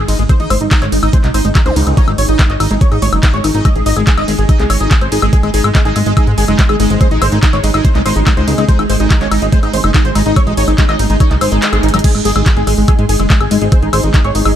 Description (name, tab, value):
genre	psychedelic trance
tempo	143 BPM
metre	4/4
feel	straight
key	unclear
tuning	A4 = 441 Hz
part	wide unison lead	melody	0.0-14.5 s	G#3 to D#5	-18 LUFS	equal	phaser, sidechain pumping, digital delay
part	pulsing gated texture	sustained chords	0.0-14.6 s	G#3	-23 LUFS	right 2 dB	chorus, built-in reverb, sidechain pumping
part	plucky analog bass	bass	0.0-14.5 s	F#1 to G#2	-15 LUFS	equal	none
part	impact and zap	sound effects	0.0-1.8 s	none	-29 LUFS	equal	none
part	granular cloud pad	texture	0.0-14.6 s	D#4 to G#5	-24 LUFS	equal	built-in reverb, sidechain pumping
part	liquid acid bass	riff	0.1-14.5 s	F#3 to D#4	-21 LUFS	moving between left 6 dB and right 6 dB	chorus, auto-pan, sidechain pumping, digital delay
part	drum and bass drum kit	drums	0.1-14.5 s	crash cymbal, handclaps, hi-hat, ride cymbal, woodblock	-19 LUFS	left 2 dB	overdrive
part	electronic kick drum	drums	0.3-14.2 s	none	-11 LUFS	equal	overdrive
part	formant-sweep wobble bass	second line	6.9-9.1, 13.6-14.1 s	F#3 to B#3	-29 LUFS	right 4 dB	none
room	digital ambience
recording	dark, warm production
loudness	-9 LUFS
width	side -10 dB against mid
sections	0.0-12.0 A section; 12.0-14.6 A section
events	drop 0.0-12.0, 12.0-14.6; impact 0.0; kick drops out 11.6-12.0; band accent 11.6; drum fill 11.8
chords	0.0 G#5